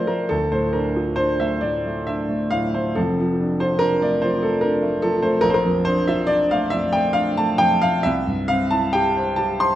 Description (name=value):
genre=classical, romantic nocturne for solo piano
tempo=66-76 BPM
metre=3/4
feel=rubato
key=unclear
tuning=A4 = 443 Hz
part: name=warm grand piano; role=solo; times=0.0-9.8 s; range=F1 to C6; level=-18 LUFS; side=equal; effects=none
room=wet recital hall reverb, RT60 1.3 s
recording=none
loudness=-18 LUFS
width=side -12 dB against mid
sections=0.0-9.8 A section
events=none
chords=0.3 Dm; 3.0 Dm/F; 5.4 Bbmaj7; 8.1 C